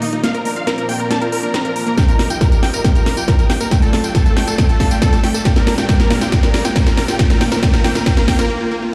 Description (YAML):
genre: uplifting trance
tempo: 138 BPM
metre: 4/4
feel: straight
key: unclear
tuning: A4 = 439 Hz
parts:
  - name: dense compressed supersaw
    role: melody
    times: 0.0-8.5 s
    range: Eb4 to Bb5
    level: -25 LUFS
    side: equal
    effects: sidechain pumping, low-pass filter, dub echo
  - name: lush unison pad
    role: sustained chords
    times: 0.0-8.5 s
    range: Bb2 to F4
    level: -28 LUFS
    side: equal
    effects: chorus, sidechain pumping
  - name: unison pluck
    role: arpeggios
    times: 0.0-8.9 s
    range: A3 to Bb4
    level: -25 LUFS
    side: equal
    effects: sidechain pumping, dub echo
  - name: techno drum kit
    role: drums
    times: 0.0-8.5 s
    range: hi-hat, snare drum, tambourine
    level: -23 LUFS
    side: equal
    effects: sidechain pumping on hats, sidechain pumping on perc, sidechain pumping on cymbals
  - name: riser and swell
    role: sound effects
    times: 1.4-8.9 s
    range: none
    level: -30 LUFS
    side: equal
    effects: none
  - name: electronic kick drum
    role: drums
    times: 2.0-8.4 s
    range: none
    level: -17 LUFS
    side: equal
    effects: none
room: light reverb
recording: played on a big sound system in a bare room, large studio reverb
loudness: -15 LUFS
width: mono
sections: 0.0-8.9 A section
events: build-up 0.0-8.9; drum fill 0.0-8.5; filter sweep on synth pluck 0.0-8.9; swell 8.1-8.9; break 8.5-8.9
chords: 0.2 Bbadd9; 2.0 Ebadd9/Bb; 3.7 Dm/Bb; 5.5 Gmadd9/Bb; 7.2 Cmadd9/Bb